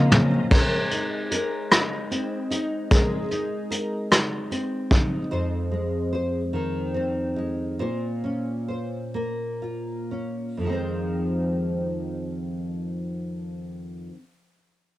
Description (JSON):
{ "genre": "six-eight pop ballad", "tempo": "39-50 BPM (dotted quarters)", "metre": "6/8", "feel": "straight", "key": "F minor", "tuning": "A4 = 440 Hz", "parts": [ { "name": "warm studio violin section", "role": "second line", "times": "0.0-0.5 s", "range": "Bb5", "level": "-44 LUFS", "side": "left 2 dB", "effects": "none" }, { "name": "nylon-string guitar", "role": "accompaniment", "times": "0.0-14.2 s", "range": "F2 to C5", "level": "-26 LUFS", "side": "equal", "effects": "double-tracked left and right" }, { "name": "bright tonewheel organ", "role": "sustained chords", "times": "0.0-0.5 s", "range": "Db3 to Eb5", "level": "-31 LUFS", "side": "equal", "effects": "chorus vibrato, fast rotary speaker" }, { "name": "fingerpicked steel-string acoustic guitar", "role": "arpeggios", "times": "0.0-1.1 s", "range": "F3 to Db4", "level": "-36 LUFS", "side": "equal", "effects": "none" }, { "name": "vintage brush drum kit", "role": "drums", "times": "0.1-5.1 s", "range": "crash cymbal, hi-hat, kick drum, rim click, toms", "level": "-20 LUFS", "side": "equal", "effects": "none" } ], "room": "light reverb, small room ambience", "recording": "home recording on cassette", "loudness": "-23 LUFS", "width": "side -16 dB against mid", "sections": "0.5-10.6 A section; 10.6-13.7 B section", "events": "drum fill 0.0-0.5; slowing down 5.3-10.6", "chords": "0.0 Bbmadd9; 0.5 Abadd9; 5.3 Fm7; 7.8 Bbmadd9; 10.6 Fm7" }